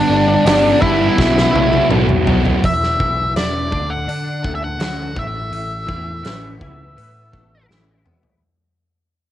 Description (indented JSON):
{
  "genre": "quiet-loud alternative rock",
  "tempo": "83 BPM",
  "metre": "4/4",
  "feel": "straight",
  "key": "unclear",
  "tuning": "A4 = 443 Hz",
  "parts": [
    { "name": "octave-fuzz lead guitar", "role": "melody", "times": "0.0-7.7 s", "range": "D4 to F#5", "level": "-18 LUFS", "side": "equal", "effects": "distortion" },
    { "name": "fuzz guitar", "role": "riff", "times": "0.0-2.6 s", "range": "G2 to E4", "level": "-20 LUFS", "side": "left 9 dB", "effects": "distortion, cassette tape" },
    { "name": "thick fuzz guitar", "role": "riff", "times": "0.0-2.6 s", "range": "G2 to E4", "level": "-18 LUFS", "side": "right 8 dB", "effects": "distortion, cassette tape" },
    { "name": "overdriven picked electric bass", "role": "bass", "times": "0.1-8.4 s", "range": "E1 to D3", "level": "-24 LUFS", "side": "equal", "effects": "none" },
    { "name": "big rock drum kit", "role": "drums", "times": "0.5-8.4 s", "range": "hi-hat, kick drum, snare drum, toms", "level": "-20 LUFS", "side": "equal", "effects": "none" },
    { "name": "twelve-string electric guitar", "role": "arpeggios", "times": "2.6-8.4 s", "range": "E2 to F#4", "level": "-32 LUFS", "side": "left 5 dB", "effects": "ensemble chorus, cassette tape" }
  ],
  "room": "light reverb",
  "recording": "home recording on cassette",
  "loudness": "-14 LUFS",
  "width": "side -12 dB against mid",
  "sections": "0.0-2.6 A section; 2.6-8.4 B section",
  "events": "drum fill 1.2-2.6, 7.7-8.4; fade-out 2.6-8.4",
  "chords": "0.0 G; 1.2 Bsus4; 2.6 E5; 3.7 D; 5.2 Asus2"
}